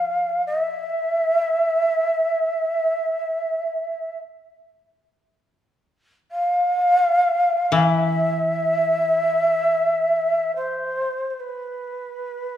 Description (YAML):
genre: japanese traditional, Japanese chamber music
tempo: free time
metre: none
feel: none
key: unclear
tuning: A4 = 440 Hz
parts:
  - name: breathy mellow shakuhachi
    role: melody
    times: 0.0-12.6 s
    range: B4 to F5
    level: -20 LUFS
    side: equal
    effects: none
  - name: koto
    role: accompaniment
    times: 0.0-0.9, 7.7-11.0 s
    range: E3 to F3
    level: -22 LUFS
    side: left 2 dB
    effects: none
room: wet recital hall reverb, RT60 1.6 s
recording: recorded in a church or concert hall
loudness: -19 LUFS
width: side -11 dB against mid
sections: 0.0-12.6 A section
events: none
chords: none